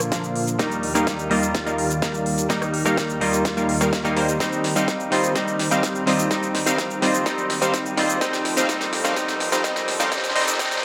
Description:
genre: EDM, festival progressive house.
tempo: 126 BPM.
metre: 4/4.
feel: straight.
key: unclear.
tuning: A4 = 438 Hz.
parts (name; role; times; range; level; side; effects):
direct-recorded clean electric guitar; accompaniment; 0.0-10.8 s; D3 to F4; -27 LUFS; equal; sidechain pumping, digital delay.
lush unison pad; sustained chords; 0.0-10.8 s; Eb2 to C5; -32 LUFS; equal; chorus, sidechain pumping.
supersaw stab; riff; 0.0-10.8 s; F3 to F5; -26 LUFS; equal; sidechain pumping, low-pass filter, digital delay.
big-room dance drum kit; drums; 0.0-10.8 s; hi-hat, rim click, shaker, snare drum; -29 LUFS; equal; high-pass filter on hats, high-pass filter on snare, high-pass filter on perc.
electronic kick drum; drums; 0.1-10.7 s; none; -31 LUFS; equal; high-pass filter on kick.
riser; sound effects; 6.8-10.8 s; none; -40 LUFS; equal; none.
room: wet digital room reverb, RT60 1.1 s, digital ambience.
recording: high-pass filter.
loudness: -22 LUFS.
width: mono.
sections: 0.0-10.8 A section.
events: build-up 0.0-10.8; drum fill 0.0-10.8; filter sweep on supersaw synth 0.0-10.8; filter sweep on analog synth pad 0.0-10.8; filter sweep 0.0-10.8.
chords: 0.0 Bb; 0.6 Eb; 4.4 Cm/Eb; 8.2 F.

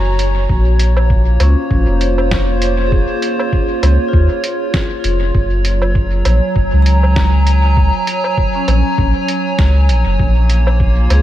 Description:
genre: ambient dub.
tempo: 99 BPM.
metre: 4/4.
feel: swing 57% on 16ths.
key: Bb minor.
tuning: A4 = 440 Hz.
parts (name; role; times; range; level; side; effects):
warbly tape-like pad; sustained chords; 0.0-11.2 s; Gb3 to Bb5; -18 LUFS; right 1 dB; chorus, built-in reverb.
vibraphone with medium hard mallets; arpeggios; 0.0-11.2 s; Db4 to Bb5; -25 LUFS; left 2 dB; tape echo.
soft dub sub bass; bass; 0.0-11.2 s; F1 to Eb2; -12 LUFS; equal; none.
lo-fi sampler-style drum kit; drums; 0.2-11.2 s; hi-hat, snare drum, woodblock; -23 LUFS; right 1 dB; dub echo.
electronic kick drum; drums; 0.5-10.9 s; none; -17 LUFS; equal; none.
room: digital ambience.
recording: none.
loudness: -11 LUFS.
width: side -13 dB against mid.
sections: 0.5-11.2 A section.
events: band accent 0.0.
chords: 0.5 Bbm9; 5.3 Gbmaj9; 10.2 Bbm9.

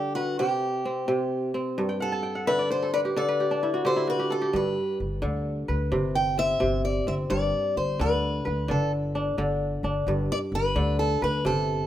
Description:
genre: west african traditional, West African string and xylophone music.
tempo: 87 BPM (dotted quarters).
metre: 12/8.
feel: straight.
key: G major.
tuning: A4 = 435 Hz.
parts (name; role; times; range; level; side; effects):
picked steel-string acoustic guitar; melody; 0.0-11.9 s; F#4 to G5; -27 LUFS; left 1 dB; none.
kora; arpeggios; 0.0-11.9 s; G2 to A5; -27 LUFS; equal; none.
upright bass; bass; 4.5-11.9 s; G1 to D2; -28 LUFS; equal; none.
room: small room ambience.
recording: rough home demo mix.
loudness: -24 LUFS.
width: side -12 dB against mid.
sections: 0.0-11.9 A section.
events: steel-string acoustic guitar solo 0.0-11.9; kora fill 1.9-4.5.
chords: 0.4 C5; 1.8 G5; 3.2 N.C.; 4.5 G; 5.9 C/G; 7.3 G.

